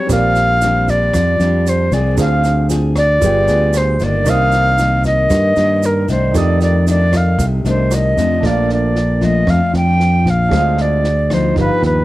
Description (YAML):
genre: bossa nova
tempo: 115 BPM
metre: 4/4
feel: straight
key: Bb major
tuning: A4 = 440 Hz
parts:
  - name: reedy silver concert flute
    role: melody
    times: 0.0-12.0 s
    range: Bb4 to G5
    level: -16 LUFS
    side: equal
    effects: none
  - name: nylon-string guitar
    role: accompaniment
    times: 0.0-12.0 s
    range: F2 to Ab4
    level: -20 LUFS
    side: left 4 dB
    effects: none
  - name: warm concert grand piano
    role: accompaniment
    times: 0.0-12.0 s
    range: Bb3 to Eb6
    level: -25 LUFS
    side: right 8 dB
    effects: none
  - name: fingered electric bass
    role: bass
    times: 0.1-12.0 s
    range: G1 to G2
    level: -16 LUFS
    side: right 1 dB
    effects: none
  - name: compact cocktail drum kit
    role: drums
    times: 0.1-11.9 s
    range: kick drum, rim click, snare drum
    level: -24 LUFS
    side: equal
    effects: none
  - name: tube shaker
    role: percussion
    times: 0.1-8.4 s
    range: none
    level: -32 LUFS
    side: right 12 dB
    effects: none
room: moderate studio reverb, RT60 0.6 s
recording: home recording on cassette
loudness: -12 LUFS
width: side -16 dB against mid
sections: 0.0-8.4 A section; 8.4-12.0 B section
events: none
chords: 0.1 Bb69; 2.2 Dm7b5; 3.2 G7b9; 4.3 Cm9; 6.3 F13; 8.4 Bbmaj7; 10.5 Dm7b5